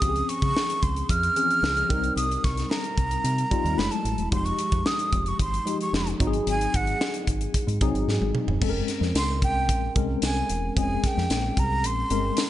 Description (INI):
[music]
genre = polished 1980s jazz-funk pop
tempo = 112 BPM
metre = 4/4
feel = straight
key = unclear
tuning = A4 = 437 Hz
[part]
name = breathy jazz flute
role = melody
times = 0.0-12.5 s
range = Gb5 to F6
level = -27 LUFS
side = right 1 dB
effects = digital delay
[part]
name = tine electric piano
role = accompaniment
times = 0.0-12.5 s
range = E3 to Bb4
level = -29 LUFS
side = left 3 dB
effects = overdrive, fast stereo tremolo, analog chorus
[part]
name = deep dub fingered electric bass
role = bass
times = 0.0-12.3 s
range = Fb1 to Db3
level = -28 LUFS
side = equal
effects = none
[part]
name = crisp fusion drum kit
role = drums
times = 0.0-12.5 s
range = crash cymbal, hi-hat, kick drum, snare drum, toms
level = -27 LUFS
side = equal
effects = gated reverb
[part]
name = tambourine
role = percussion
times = 9.2-12.5 s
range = none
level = -37 LUFS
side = right 7 dB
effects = none
[sound]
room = small room ambience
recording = nothing above 10.5 kHz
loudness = -22 LUFS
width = side -13 dB against mid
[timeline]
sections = 0.0-8.6 A section; 8.6-12.5 B section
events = drum fill 8.1-8.6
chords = 0.0 Dbmaj7; 1.9 Cm7; 3.8 Gbm9; 4.3 Fm9; 6.2 Ab7; 8.6 Bbm9